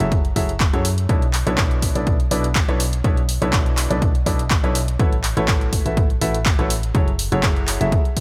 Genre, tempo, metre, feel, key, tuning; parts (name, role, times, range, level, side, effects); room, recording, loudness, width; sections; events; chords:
piano house; 123 BPM; 4/4; swing 53% on 16ths; B dorian; A4 = 440 Hz
warm concert grand piano; riff; 0.0-8.0 s; B2 to E5; -26 LUFS; equal; sidechain pumping
solid FM bass; bass; 0.0-8.0 s; F#1 to F#2; -25 LUFS; equal; sidechain pumping
house drum kit; drums; 0.0-8.2 s; handclaps, hi-hat; -27 LUFS; equal; overdrive
electronic kick drum; drums; 0.1-8.2 s; -22 LUFS; equal
little or no reverb; -19 LUFS; mono
0.0-8.2 A section
0.0 F#m9; 1.1 Bm11; 5.0 A69; 6.9 F#m9